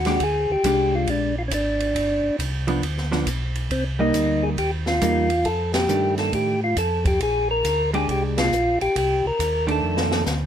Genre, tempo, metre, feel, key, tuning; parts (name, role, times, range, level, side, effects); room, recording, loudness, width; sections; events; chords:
soul jazz organ trio; 137 BPM; 4/4; swing 66% on 8ths; A4 = 439 Hz
percussive tonewheel organ; melody; 0.0-10.2 s; C4 to Bb4; -22 LUFS; left 1 dB; slow rotary speaker
mellow tonewheel organ; bass; 0.0-10.5 s; G1 to A2; -26 LUFS; equal; slow rotary speaker
open jazz drum kit; drums; 0.0-10.4 s; hi-hat, kick drum, ride cymbal, snare drum; -29 LUFS; right 1 dB
vintage hollow-body jazz guitar; accompaniment; 0.1-10.2 s; Eb3 to G4; -25 LUFS; right 2 dB
light reverb; -20 LUFS; side -9 dB against mid
0.0-10.5 A section
band accent 5.7, 8.3; drum fill 9.8-10.3
0.2 Bb13; 2.0 G7; 3.7 Cm7; 5.5 F13; 7.2 Bb13; 9.0 Cm7; 9.8 F6